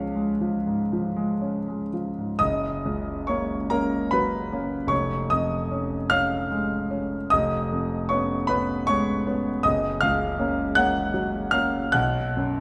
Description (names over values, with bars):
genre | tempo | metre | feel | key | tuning
classical, romantic nocturne for solo piano | 39-54 BPM (dotted quarters) | 6/8 | rubato | F# major | A4 = 442 Hz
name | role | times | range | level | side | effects
warm concert grand piano | solo | 0.0-12.6 s | E#1 to F#6 | -25 LUFS | equal | none
room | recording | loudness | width
moderate concert hall reverb, RT60 2.4 s | recorded in a church or concert hall | -25 LUFS | mono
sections
0.0-2.4 A section; 2.4-12.6 B section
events
none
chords
0.0 C#; 2.4 F#; 4.9 C#/E#; 7.3 C#7/E#; 9.6 F#; 11.9 B5